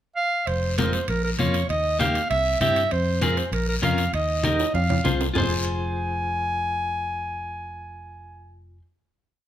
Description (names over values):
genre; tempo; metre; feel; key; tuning
latin, cumbia; 196 BPM; 4/4; straight; F minor; A4 = 440 Hz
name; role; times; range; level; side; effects
clear clarinet; melody; 0.2-8.6 s; Bb4 to Ab5; -25 LUFS; right 1 dB; none
fingered electric bass; bass; 0.5-8.8 s; F1 to G2; -27 LUFS; equal; none
congas; percussion; 0.5-5.4 s; none; -29 LUFS; left 3 dB; none
guiro; percussion; 0.5-5.4 s; none; -35 LUFS; left 5 dB; none
timbales; percussion; 0.5-5.4 s; none; -33 LUFS; right 7 dB; none
clean electric guitar; accompaniment; 0.8-8.8 s; Ab3 to C5; -28 LUFS; left 2 dB; tremolo
room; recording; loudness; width
moderate large studio reverb, RT60 0.9 s; minimal, uncompressed stereo recording; -21 LUFS; side -11 dB against mid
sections
0.0-0.5 pickup bar; 0.5-5.4 A section; 5.4-7.8 final chord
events
drum fill 4.6-5.4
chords
0.5 Fm; 1.1 Bbm; 1.7 Eb; 2.3 C; 2.9 Fm; 3.5 Bbm; 4.1 Eb; 4.7 Fm